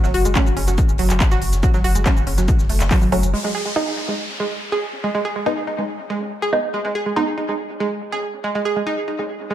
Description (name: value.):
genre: driving peak-time techno.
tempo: 141 BPM.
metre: 4/4.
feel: straight.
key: G# phrygian.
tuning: A4 = 438 Hz.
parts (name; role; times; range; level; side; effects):
analog pluck; riff; 0.0-9.5 s; F#3 to G#4; -22 LUFS; right 2 dB; chorus, sidechain pumping, diffuse ambient delay.
saturated sub bass; bass; 0.0-3.3 s; F#1; -20 LUFS; equal; overdrive, sidechain pumping, low-pass filter.
compact cocktail drum kit; drums; 0.0-9.5 s; hi-hat, snare drum; -39 LUFS; left 2 dB; none.
techno drum kit; drums; 0.0-9.5 s; handclaps, hi-hat, shaker; -26 LUFS; equal; low-pass filter on snare, sidechain pumping on hats, low-pass filter on hats, sidechain pumping on perc, low-pass filter on perc, low-pass filter on room.
filtered dub chord stab; stabs; 0.4-7.2 s; F#3 to D#4; -25 LUFS; right 1 dB; phaser, sidechain pumping, diffuse ambient delay.
electronic kick drum; drums; 0.4-3.0 s; none; -18 LUFS; equal; none.
downlifter and swell; sound effects; 3.3-9.5 s; none; -30 LUFS; equal; none.
room: moderate plate reverb, RT60 1.1 s, digital ambience.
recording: dreamy mix soaked in reverb.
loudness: -18 LUFS.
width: side -12 dB against mid.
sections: 0.0-3.3 A section; 3.3-9.5 B section.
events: none.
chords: 0.0 F#5; 3.3 G#5.